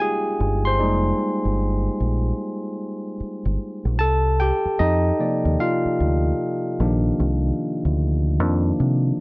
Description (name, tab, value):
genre	R&B, neo-soul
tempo	75 BPM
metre	4/4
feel	swing 63% on 16ths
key	F minor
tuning	A4 = 440 Hz
part	barky tine electric piano	accompaniment	0.0-9.2 s	C3 to C6	-22 LUFS	equal	overdrive
part	deep dub fingered electric bass	bass	0.4-9.1 s	F1 to C3	-20 LUFS	equal	none
room	light reverb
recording	worn, warbling old tape, cassette tape, warbly pitch drift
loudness	-19 LUFS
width	side -24 dB against mid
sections	0.0-9.2 A section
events	tine electric piano solo 0.0-9.2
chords	0.0 Fm11; 4.0 Cm11